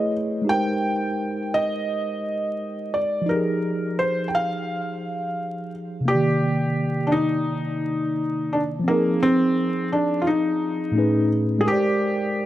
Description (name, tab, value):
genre	hip hop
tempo	86 BPM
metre	4/4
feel	swing 63% on 16ths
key	F dorian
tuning	A4 = 440 Hz
part	felt-muted upright piano	melody	0.0-12.5 s	Bb3 to G5	-23 LUFS	equal	none
part	mellow tine electric piano	accompaniment	0.0-12.5 s	A2 to D#5	-24 LUFS	equal	medium stereo tremolo
room	light reverb, small room reverb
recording	vinyl crackle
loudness	-20 LUFS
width	side -14 dB against mid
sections	0.0-6.1 A section; 6.1-12.5 A section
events	none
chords	0.5 Abmaj9; 3.3 Fm9; 6.1 Cm9; 8.9 Fm7; 11.0 Amaj9#11; 11.7 Abmaj9#11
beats	| 0.49 1.19 1.89 2.58 | 3.28 3.98 4.68 5.37 | 6.07 6.77 7.47 8.16 | 8.86 9.56 10.26 10.96 | 11.65 12.35